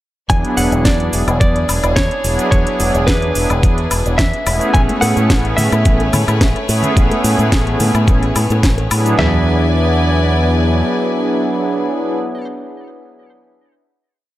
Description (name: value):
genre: nu-disco, nu disco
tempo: 108 BPM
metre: 4/4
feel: straight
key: E mixolydian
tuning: A4 = 438 Hz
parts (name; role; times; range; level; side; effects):
- direct-recorded clean electric guitar; melody; 0.3-12.5 s; B4 to G#5; -21 LUFS; equal; dub echo
- warm analog pad; accompaniment; 0.3-12.2 s; F#3 to C#5; -18 LUFS; equal; chorus, sidechain pumping, tape echo
- rich chamber violin section; sustained chords; 0.3-12.2 s; A3 to G#5; -24 LUFS; left 1 dB; sidechain pumping
- fingered electric bass with an envelope filter; bass; 0.3-10.8 s; E1 to A2; -17 LUFS; equal; none
- dusty soul sampler-style drum kit; drums; 0.3-9.3 s; kick drum, snare drum, toms; -15 LUFS; equal; overdrive
- house drum kit; drums; 0.3-9.2 s; cabasa, hi-hat, snare drum, woodblock; -21 LUFS; left 1 dB; overdrive
- congas and bongos; percussion; 4.9-8.9 s; none; -26 LUFS; left 2 dB; none
room: light reverb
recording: echo-heavy mix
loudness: -12 LUFS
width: side -15 dB against mid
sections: 0.3-9.2 drop; 9.2-11.4 final chord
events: drop 0.3-9.2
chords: 0.3 E7; 4.7 Amaj9; 9.2 E7